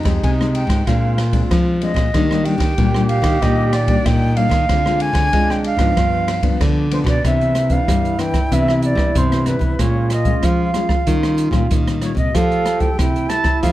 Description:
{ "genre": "samba and choro", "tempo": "94 BPM", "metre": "4/4", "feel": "straight", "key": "C major from 7.2 s", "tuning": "A4 = 437 Hz", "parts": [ { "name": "breathy trombone", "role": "second line", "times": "0.0-13.7 s", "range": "D4 to A4", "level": "-25 LUFS", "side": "right 3 dB", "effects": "none" }, { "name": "nylon-string guitar", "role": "accompaniment", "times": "0.0-13.7 s", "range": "G2 to G4", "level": "-23 LUFS", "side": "left 5 dB", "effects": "none" }, { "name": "nylon-string guitar", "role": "bass", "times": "0.0-13.7 s", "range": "F2 to Ab3", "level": "-19 LUFS", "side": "equal", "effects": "none" }, { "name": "open jazz drum kit", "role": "drums", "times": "0.1-13.7 s", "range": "hi-hat, kick drum, ride cymbal, rim click", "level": "-19 LUFS", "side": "equal", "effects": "none" }, { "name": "silver concert flute", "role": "melody", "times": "0.2-13.7 s", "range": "B4 to A5", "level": "-22 LUFS", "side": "right 2 dB", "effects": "none" } ], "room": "light reverb", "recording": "dark, warm production", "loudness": "-14 LUFS", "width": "side -15 dB against mid", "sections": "0.0-7.2 A section; 7.2-13.7 B section", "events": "none", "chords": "0.0 Fm9; 0.9 Bb9; 2.1 Ebmaj7; 4.7 Dm7b5; 6.0 G7; 7.2 Cmaj9; 9.8 Bbm7; 11.1 Eb9; 12.3 Fmaj9" }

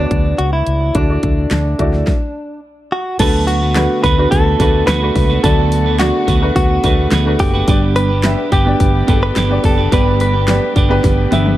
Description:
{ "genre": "piano-driven pop", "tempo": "107 BPM", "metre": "4/4", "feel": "straight", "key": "D major", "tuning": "A4 = 440 Hz", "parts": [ { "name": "direct-recorded clean electric guitar", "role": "melody", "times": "0.0-10.7 s", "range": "D4 to B4", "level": "-19 LUFS", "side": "equal", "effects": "ping-pong delay" }, { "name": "clear upright piano", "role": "accompaniment", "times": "0.0-11.6 s", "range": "G2 to E5", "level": "-20 LUFS", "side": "right 1 dB", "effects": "none" }, { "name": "fretless electric bass", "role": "bass", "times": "0.0-11.6 s", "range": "F#1 to D2", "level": "-16 LUFS", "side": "equal", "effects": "none" }, { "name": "pop drum kit", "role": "drums", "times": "0.1-11.6 s", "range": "crash cymbal, handclaps, hi-hat, kick drum, snare drum, toms", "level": "-17 LUFS", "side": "equal", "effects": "none" }, { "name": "warm studio string section", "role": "sustained chords", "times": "3.2-11.6 s", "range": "D3 to G4", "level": "-27 LUFS", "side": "left 3 dB", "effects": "none" }, { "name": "clean electric guitar", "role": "riff", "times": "3.2-11.6 s", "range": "D3 to B4", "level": "-20 LUFS", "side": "right 5 dB", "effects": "spring reverb" } ], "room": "light reverb", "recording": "dark, warm production", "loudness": "-12 LUFS", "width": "side -14 dB against mid", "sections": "0.0-3.2 A section; 3.2-11.6 B section", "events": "stop 2.1-3.2; drum fill 11.0-11.6", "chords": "0.0 Bm/D; 1.0 Dadd9; 3.2 D6; 7.7 G" }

